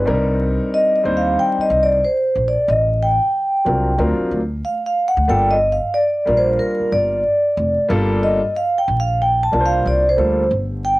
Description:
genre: hip hop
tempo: 92 BPM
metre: 4/4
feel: swing 63% on 16ths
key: G minor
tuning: A4 = 440 Hz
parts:
  - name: vibraphone with soft mallets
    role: melody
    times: 0.0-11.0 s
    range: Bb4 to A5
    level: -16 LUFS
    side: equal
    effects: cassette tape
  - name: warm baby grand piano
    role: accompaniment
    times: 0.0-10.4 s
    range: F#3 to C5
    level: -20 LUFS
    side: left 1 dB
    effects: cassette tape
  - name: upright bass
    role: bass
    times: 0.0-11.0 s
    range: F1 to Eb2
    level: -21 LUFS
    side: equal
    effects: none
room: moderate studio reverb, RT60 0.6 s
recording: home recording on cassette, vinyl crackle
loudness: -15 LUFS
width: side -19 dB against mid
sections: 0.0-10.5 A section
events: vibraphone solo 0.0-10.5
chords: 0.1 Cm9; 2.7 Am7b5; 4.0 D7alt; 5.3 Gm7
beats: | 0.07 0.72 1.38 2.03 | 2.68 3.33 3.98 4.64 | 5.29 5.94 6.59 7.24 | 7.90 8.55 9.20 9.85 | 10.51

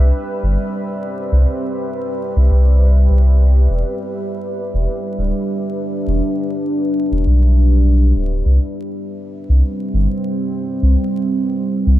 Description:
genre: ambient dub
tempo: 101 BPM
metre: 4/4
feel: straight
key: unclear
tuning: A4 = 440 Hz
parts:
  - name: deep dark ambient pad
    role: sustained chords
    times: 0.0-12.0 s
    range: G3 to E5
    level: -20 LUFS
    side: equal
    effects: chorus, built-in reverb
  - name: warm sub bass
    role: bass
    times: 0.0-12.0 s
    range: D1 to C2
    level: -12 LUFS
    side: equal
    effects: none
room: light reverb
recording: vinyl crackle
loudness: -14 LUFS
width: side -14 dB against mid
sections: 0.0-12.0 A section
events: fade-in on ambient pad 0.0-12.0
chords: 0.0 Cmaj7; 3.7 Em7; 8.5 Cmaj7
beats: 0.14 0.73 | 1.32 1.92 2.51 3.11 | 3.70 4.29 4.89 5.48 | 6.08 6.67 7.26 7.86 | 8.45 9.05 9.64 10.23 | 10.83 11.42

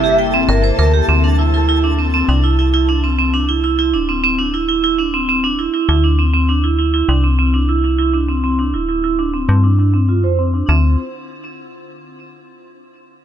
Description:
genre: IDM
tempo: 100 BPM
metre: 4/4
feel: straight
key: D minor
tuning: A4 = 440 Hz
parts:
  - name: warbly nostalgic lead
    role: melody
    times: 0.0-0.8 s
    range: E5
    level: -20 LUFS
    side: right 1 dB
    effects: tremolo, ensemble chorus, ping-pong delay
  - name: icy glass pad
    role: sustained chords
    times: 0.0-1.0, 10.9-11.0 s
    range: C3 to E4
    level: -27 LUFS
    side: left 6 dB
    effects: chorus, built-in reverb, vintage 12-bit sampler grit
  - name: vibraphone with hard mallets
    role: arpeggios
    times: 0.0-11.0 s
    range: C4 to G5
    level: -16 LUFS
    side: right 3 dB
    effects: low-pass filter, digital delay
  - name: metallic FM bass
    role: bass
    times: 0.0-11.0 s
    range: D1 to G2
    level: -16 LUFS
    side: left 1 dB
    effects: tube saturation
  - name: twinkling granular texture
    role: texture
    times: 0.0-1.1 s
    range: A4 to A5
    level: -28 LUFS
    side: left 2 dB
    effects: built-in reverb
room: digital ambience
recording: none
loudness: -13 LUFS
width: side -10 dB against mid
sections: 0.0-1.1 A section; 1.1-10.7 B section; 10.7-13.1 C section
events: filter sweep on vibraphone 1.1-10.7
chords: 0.0 C7; 1.1 D7sus2; 10.7 Dm9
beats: 0.49 | 1.09 1.69 2.29 2.89 | 3.49 4.09 4.69 5.29 | 5.89 6.49 7.09 7.69 | 8.29 8.89 9.49 10.09 | 10.69

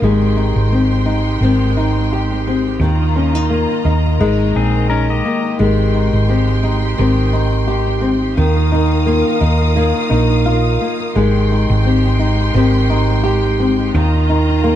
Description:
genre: acoustic pop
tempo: 86 BPM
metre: 4/4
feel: swing 55% on 16ths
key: Ab major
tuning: A4 = 440 Hz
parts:
  - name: flamenco guitar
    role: accompaniment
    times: 0.0-14.8 s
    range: Eb3 to G4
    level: -17 LUFS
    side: left 2 dB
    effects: none
  - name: rich studio string section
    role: sustained chords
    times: 0.0-14.8 s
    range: Ab3 to Eb6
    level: -24 LUFS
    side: left 1 dB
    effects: none
  - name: fingerpicked steel-string acoustic guitar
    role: arpeggios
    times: 0.0-14.8 s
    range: Eb3 to G4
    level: -23 LUFS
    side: right 2 dB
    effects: tape echo
  - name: hollow-body short-scale fingered electric bass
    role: bass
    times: 0.0-14.8 s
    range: Ab1 to Eb2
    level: -15 LUFS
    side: right 1 dB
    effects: none
  - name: pedal steel guitar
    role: second line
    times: 4.6-5.6 s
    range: C4 to Eb5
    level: -21 LUFS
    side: left 5 dB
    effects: none
room: light reverb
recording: dark, warm production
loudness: -13 LUFS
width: side -11 dB against mid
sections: 0.0-5.6 A section; 5.6-14.8 A section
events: none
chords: 0.0 Abmaj7; 2.8 Ebsus2; 4.2 Absus2; 5.6 Abmaj7; 8.4 Ebsus2; 11.2 Abmaj7; 13.9 Ebsus2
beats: | 0.02 0.72 1.42 2.11 | 2.81 3.50 4.20 4.89 | 5.59 6.29 6.98 7.68 | 8.37 9.07 9.77 10.46 | 11.16 11.85 12.55 13.25 | 13.94 14.64

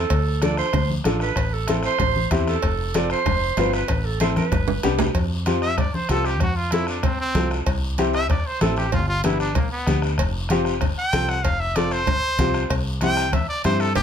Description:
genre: latin, cumbia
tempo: 190 BPM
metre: 4/4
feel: straight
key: unclear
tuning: A4 = 440 Hz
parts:
  - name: breathy clarinet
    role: second line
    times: 0.0-4.8 s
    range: A4 to D5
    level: -25 LUFS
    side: right 6 dB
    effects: none
  - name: fingered electric bass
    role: bass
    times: 0.0-14.0 s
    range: F1 to G2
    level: -25 LUFS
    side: equal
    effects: none
  - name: bombo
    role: percussion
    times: 0.1-14.0 s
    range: none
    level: -27 LUFS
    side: left 2 dB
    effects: none
  - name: cowbell and timbales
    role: percussion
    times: 0.1-14.0 s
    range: none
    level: -30 LUFS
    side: right 4 dB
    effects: none
  - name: guiro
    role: percussion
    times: 0.1-14.0 s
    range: none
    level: -36 LUFS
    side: left 2 dB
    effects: none
  - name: warm upright piano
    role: accompaniment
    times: 0.4-13.9 s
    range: B3 to B4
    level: -24 LUFS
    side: left 2 dB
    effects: none
  - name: congas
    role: percussion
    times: 0.4-14.0 s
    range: none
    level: -28 LUFS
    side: right 1 dB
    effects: none
  - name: bright trumpet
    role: melody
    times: 5.6-14.0 s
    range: Bb3 to G5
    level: -24 LUFS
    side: right 1 dB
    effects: none
room: light reverb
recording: none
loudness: -19 LUFS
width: side -8 dB against mid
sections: 0.0-5.2 A section; 5.2-14.0 B section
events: clarinet solo 0.0-5.2; drum fill 4.2-5.2; trumpet solo 5.2-14.0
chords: 0.1 Dm; 1.4 Am; 2.6 F; 3.9 Am; 4.5 G; 5.2 Fsus2; 7.7 C; 8.9 G; 10.2 Fsus2; 12.7 C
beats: | 0.11 0.42 0.74 1.05 | 1.37 1.69 2.00 2.31 | 2.63 2.94 3.26 3.58 | 3.89 4.21 4.52 4.84 | 5.15 5.46 5.78 6.09 | 6.41 6.72 7.04 7.35 | 7.67 7.98 8.30 8.61 | 8.93 9.24 9.56 9.87 | 10.19 10.50 10.82 11.13 | 11.45 11.76 12.08 12.39 | 12.71 13.02 13.34 13.65 | 13.96

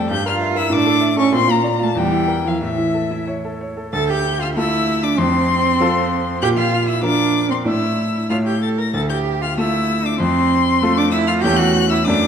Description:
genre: quick classical-period movement for piano trio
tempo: 96 BPM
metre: 2/4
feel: rubato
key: D minor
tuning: A4 = 441 Hz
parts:
  - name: rich violin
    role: melody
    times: 0.0-12.3 s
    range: E5 to Bb6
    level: -21 LUFS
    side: left 9 dB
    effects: none
  - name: rich cello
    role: second line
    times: 0.0-12.3 s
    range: E3 to Bb4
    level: -20 LUFS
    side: right 5 dB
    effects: none
  - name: clear concert grand piano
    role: accompaniment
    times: 0.0-12.3 s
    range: D2 to E5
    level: -19 LUFS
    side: equal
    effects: none
room: wet recital hall reverb, RT60 1.7 s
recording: dark, warm production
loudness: -15 LUFS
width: side -7 dB against mid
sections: 0.0-3.9 A section; 3.9-12.3 B section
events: none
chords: 0.1 Edim/G; 0.7 A5; 1.3 Bb; 2.0 Edim; 2.6 A; 3.9 Dm; 5.2 F; 6.4 Bb5; 7.7 Asus4; 8.3 A; 8.9 Dm; 10.2 F; 11.4 A/E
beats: | 0.12 0.73 | 1.34 1.98 | 2.63 3.29 | 3.94 4.57 | 5.19 5.80 | 6.42 7.04 | 7.66 8.30 | 8.95 9.58 | 10.20 10.82 | 11.44 12.07

